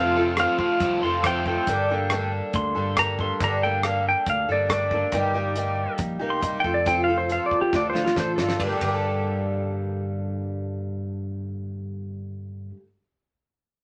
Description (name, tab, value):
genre	folk rock and heartland rock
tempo	138 BPM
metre	4/4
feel	straight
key	G minor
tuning	A4 = 440 Hz
part	pedal steel guitar	melody	0.0-8.6 s	F4 to C6	-27 LUFS	equal	none
part	picked twelve-string acoustic guitar	accompaniment	0.0-12.9 s	G2 to A4	-29 LUFS	equal	none
part	crunchy overdriven guitar	riff	0.0-1.7 s	F2 to F4	-31 LUFS	equal	none
part	picked electric bass	bass	0.0-12.7 s	F1 to D2	-33 LUFS	equal	none
part	damped 70s drum kit	drums	0.4-8.9 s	hi-hat, kick drum, ride cymbal, rim click, snare drum	-31 LUFS	equal	none
room	moderate studio reverb, RT60 0.6 s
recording	none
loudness	-24 LUFS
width	mono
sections	0.0-8.6 A section; 8.6-12.1 B section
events	pedal steel guitar solo 0.0-8.6; drum fill 7.7-8.6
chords	0.0 F; 1.7 Gmadd9; 5.1 Eb/G; 6.6 F; 7.7 Dm; 8.6 Gmadd9